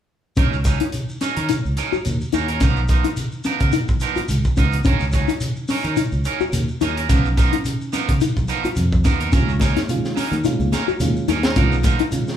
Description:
afrobeat; 107 BPM; 4/4; swing 55% on 16ths; Eb minor; A4 = 440 Hz
handpan; arpeggios; 0.4-12.1 s; Db4 to Gb4; -24 LUFS; left 5 dB
electric guitar at the edge of break-up; stabs; 0.4-12.0 s; F3 to Bb4; -25 LUFS; right 5 dB
fingered electric bass; bass; 0.4-12.0 s; Cb2 to Eb3; -23 LUFS; equal
tight funk drum kit; drums; 0.4-12.3 s; hi-hat, kick drum, snare drum; -21 LUFS; equal
shekere; percussion; 0.4-12.4 s; -27 LUFS; equal
reed electric piano; accompaniment; 9.3-12.4 s; Eb3 to F4; -26 LUFS; right 4 dB
congas; percussion; 9.6-12.0 s; -28 LUFS; left 4 dB
moderate large studio reverb, RT60 0.9 s; band playing live in one room; -17 LUFS; side -10 dB against mid
0.4-12.4 A section
0.4 Ebm7; 2.6 Db13; 4.9 Ebm7; 7.1 Db13; 9.3 Ebm7; 11.6 Db13

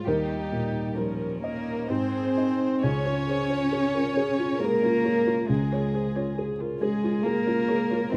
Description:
neoclassical piano and strings; 68 BPM; 3/4; rubato; Db major; A4 = 441 Hz
warm chamber violin section; melody; 0.0-8.2 s; G4 to Db5; -34 LUFS; equal
dark cello; second line; 0.0-8.2 s; F3 to Db4; -29 LUFS; equal
felt-muted upright piano; accompaniment; 0.0-8.2 s; Db2 to Eb5; -31 LUFS; equal
warm viola; accompaniment; 0.0-8.2 s; C4 to Ab4; -39 LUFS; equal
thumb-piano-like synth pluck; arpeggios; 2.8-8.2 s; Db4 to Db5; -39 LUFS; equal
light reverb, small room ambience; rough home demo mix; -26 LUFS; mono
0.0-2.8 A section; 2.8-8.2 B section
0.1 Eb; 1.9 Ab; 2.8 Db

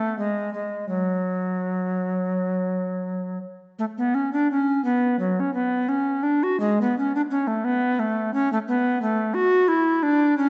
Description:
classical, baroque-style fantasia for unaccompanied recorder; 85 BPM; 4/4; uneven beats, rubato; F# minor; A4 = 438 Hz
bass recorder; solo; 0.0-10.5 s; F#3 to F#4; -23 LUFS; equal
moderate scoring stage reverb, RT60 1.7 s; recorded in a church or concert hall, nothing above 7.9 kHz; -23 LUFS; mono
0.0-3.8 A section; 3.8-10.5 A section

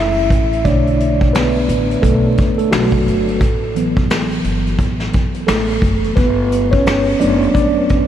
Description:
lo-fi hip hop; 87 BPM; 4/4; swing 61% on 16ths; B minor; A4 = 440 Hz
mellow tine electric piano; accompaniment; 0.0-8.1 s; D3 to E5; -16 LUFS; equal; medium stereo tremolo
upright bass; bass; 0.0-7.8 s; F#1 to B1; -20 LUFS; equal
vintage brush drum kit; drums; 0.3-8.1 s; finger snaps, hi-hat, kick drum, snare drum; -18 LUFS; equal
moderate huge ambient reverb, RT60 7.5 s; dreamy mix soaked in reverb, vinyl crackle; -13 LUFS; side -10 dB against mid
0.0-8.1 A section
tine electric piano solo 0.0-8.1
0.0 F#m7; 0.7 Bm9; 3.4 F#madd11; 6.2 Gmaj7

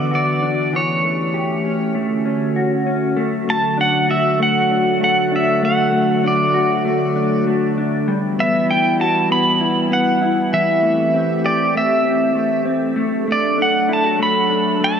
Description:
dream pop; 98 BPM; 4/4; straight; D major; A4 = 441 Hz
pedal steel guitar; melody; 0.0-15.0 s; C#5 to B5; -18 LUFS; right 1 dB; tape echo
warbly tape-like pad; sustained chords; 0.0-15.0 s; D3 to A4; -21 LUFS; right 1 dB; chorus, built-in reverb
mellow electric guitar; arpeggios; 0.0-15.0 s; E3 to G4; -20 LUFS; left 3 dB; analog chorus, tape echo
wet huge ambient reverb, RT60 4.5 s; -15 LUFS; side -7 dB against mid
0.0-3.2 A section; 3.2-15.0 B section
0.0 D69; 0.7 A7; 1.9 Dmaj7; 3.2 D; 8.1 Emadd9; 10.5 C6; 13.0 D

